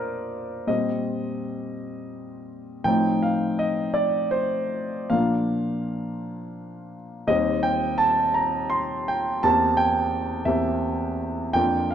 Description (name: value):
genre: classical, romantic character piece for solo piano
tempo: 48-59 BPM (dotted quarters)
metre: 6/8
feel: rubato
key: unclear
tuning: A4 = 440 Hz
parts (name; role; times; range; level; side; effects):
- warm grand piano; solo; 0.0-11.9 s; Eb2 to C6; -22 LUFS; equal; none
room: light reverb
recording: dark, warm production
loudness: -22 LUFS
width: side -9 dB against mid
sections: 0.0-11.9 A section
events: none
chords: 0.0 Bb; 0.7 Cm7/Bb; 2.9 F7/A; 5.1 Bb; 7.3 Cm/Eb; 9.5 C7/E